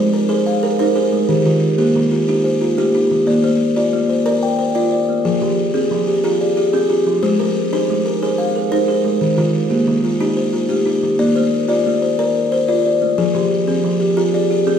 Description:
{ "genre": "southern african traditional", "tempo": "121 BPM (dotted quarters)", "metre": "12/8", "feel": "straight", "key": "Bb mixolydian", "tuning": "A4 = 442 Hz", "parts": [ { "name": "buzzing kalimba", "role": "arpeggios", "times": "0.0-14.8 s", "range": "Eb3 to G5", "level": "-16 LUFS", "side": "left 2 dB", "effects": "none" }, { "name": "kalimba", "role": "arpeggios", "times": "0.0-14.8 s", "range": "Eb3 to D5", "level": "-19 LUFS", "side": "right 4 dB", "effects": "none" } ], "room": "wet recital hall reverb, RT60 1.4 s", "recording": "heard from further back in the room", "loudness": "-14 LUFS", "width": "side -8 dB against mid", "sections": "0.0-11.2 A section; 11.2-14.8 B section", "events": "none", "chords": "0.0 Ab; 1.3 Eb; 3.3 Bb; 5.3 Fm; 7.2 Ab; 9.2 Eb; 11.2 Bb; 13.2 Fm" }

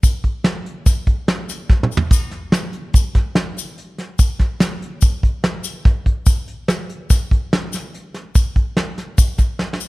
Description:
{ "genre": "progressive instrumental, progressive", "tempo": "144 BPM", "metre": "5/4", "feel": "straight", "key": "none", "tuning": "none", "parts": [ { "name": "soft brush drum kit", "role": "drums", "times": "0.0-9.8 s", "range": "hi-hat, kick drum, snare drum, splash cymbal, toms", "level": "-15 LUFS", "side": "equal", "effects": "none" }, { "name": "tube shaker", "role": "percussion", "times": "0.0-9.9 s", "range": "none", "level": "-29 LUFS", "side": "left 8 dB", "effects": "none" } ], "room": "light reverb", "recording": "none", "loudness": "-16 LUFS", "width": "side -21 dB against mid", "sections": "0.0-9.9 A section", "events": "drum fill 1.7-2.1, 9.6", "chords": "none" }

